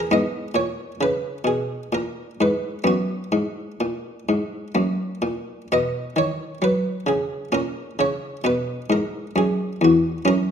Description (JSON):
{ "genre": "classical, baroque-style suite movement for harpsichord", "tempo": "65 BPM", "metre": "3/4", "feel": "uneven beats, rubato", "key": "B major", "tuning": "A4 = 441 Hz", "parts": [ { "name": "buff-stop harpsichord", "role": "solo", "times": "0.0-10.5 s", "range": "E2 to D#5", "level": "-20 LUFS", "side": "equal", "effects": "none" } ], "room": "wet recital hall reverb, RT60 1.5 s", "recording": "minimal, uncompressed stereo recording", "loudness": "-21 LUFS", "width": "side -8 dB against mid", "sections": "0.0-10.5 A section", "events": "none", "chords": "0.1 G#m; 2.9 B5/F#; 4.8 F#; 5.7 B; 7.6 A#m; 8.5 B5", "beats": "| 0.11 1.01 1.93 | 2.88 3.82 4.77 | 5.72 6.65 7.56 | 8.47 9.37 10.27" }